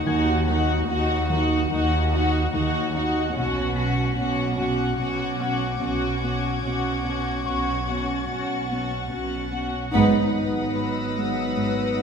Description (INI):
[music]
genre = cinematic, suspense film score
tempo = 73 BPM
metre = 4/4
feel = straight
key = unclear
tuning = A4 = 440 Hz
[part]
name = warm studio violin section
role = melody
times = 0.0-12.0 s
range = Gb5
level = -30 LUFS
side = left 5 dB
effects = none
[part]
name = warm chamber violin section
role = second line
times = 0.0-12.0 s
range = Gb4 to B4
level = -29 LUFS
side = left 1 dB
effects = none
[part]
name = dark chamber viola section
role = accompaniment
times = 0.0-12.0 s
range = C#4 to Eb4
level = -29 LUFS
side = right 1 dB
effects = none
[part]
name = warm chamber cello section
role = riff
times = 0.1-12.0 s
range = G#2 to Eb4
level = -29 LUFS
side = right 2 dB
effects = none
[part]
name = dark chamber cello section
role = bass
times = 0.1-12.0 s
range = Eb2 to B2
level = -30 LUFS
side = right 2 dB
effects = none
[part]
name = warm studio double bass section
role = bass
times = 0.1-12.0 s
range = G#1 to Eb2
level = -30 LUFS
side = right 1 dB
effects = none
[part]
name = concert harp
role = texture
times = 0.1-12.0 s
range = B4 to B6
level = -35 LUFS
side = left 5 dB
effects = none
[part]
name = dark chamber violin section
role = texture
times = 3.4-12.0 s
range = C#6 to A#6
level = -36 LUFS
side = left 5 dB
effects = none
[part]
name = mellow French horn section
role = sustained chords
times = 9.9-12.0 s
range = F#3 to B3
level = -27 LUFS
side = right 1 dB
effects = none
[sound]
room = wet recital hall reverb, RT60 1.6 s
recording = recorded in a church or concert hall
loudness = -21 LUFS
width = side -6 dB against mid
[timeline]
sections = 0.0-9.9 A section; 9.9-12.0 B section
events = band accent 9.9-10.8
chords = 0.0 Ebm; 3.4 Bsus2; 9.9 G#m7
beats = | 0.07 0.89 1.71 2.53 | 3.35 4.17 5.00 5.82 | 6.64 7.46 8.28 9.11 | 9.93 10.75 11.57